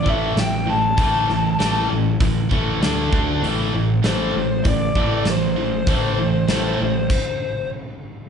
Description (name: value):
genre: hard rock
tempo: 98 BPM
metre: 4/4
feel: straight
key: A minor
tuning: A4 = 441 Hz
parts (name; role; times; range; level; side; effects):
- bluesy overdriven lead guitar; melody; 0.0-7.7 s; C5 to A5; -23 LUFS; left 2 dB; distortion
- overdriven semi-hollow guitar; riff; 0.0-7.1 s; A2 to D4; -24 LUFS; left 5 dB; none
- scooped high-gain guitar; riff; 0.0-7.1 s; A2 to D4; -24 LUFS; right 8 dB; distortion
- fuzz fingered electric bass; bass; 0.0-7.1 s; A1 to D2; -25 LUFS; equal; overdrive
- huge arena drum kit; drums; 0.1-7.2 s; crash cymbal, hi-hat, kick drum, snare drum; -23 LUFS; equal; none
room: moderate large studio reverb, RT60 1.2 s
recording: band playing live in one room, nothing above 10.8 kHz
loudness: -17 LUFS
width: side -7 dB against mid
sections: 0.0-8.3 A section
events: stop 7.1-8.3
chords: 0.0 A5; 2.8 D5; 3.4 Am